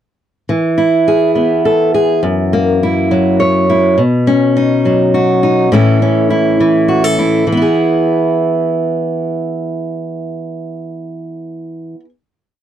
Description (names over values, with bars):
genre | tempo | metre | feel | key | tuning
indie folk with a building arrangement | 69 BPM (dotted quarters) | 6/8 | straight | E major | A4 = 439 Hz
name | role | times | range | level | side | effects
fingerpicked steel-string acoustic guitar | solo | 0.5-12.1 s | F#2 to C#5 | -11 LUFS | equal | none
room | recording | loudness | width
moderate booth ambience, RT60 0.2 s | dry, close 1970s-style studio recording | -10 LUFS | side -10 dB against mid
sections
0.5-7.5 verse; 7.5-11.0 final chord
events
none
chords
0.5 E; 2.2 F#7; 4.0 Badd9; 5.7 A; 7.5 E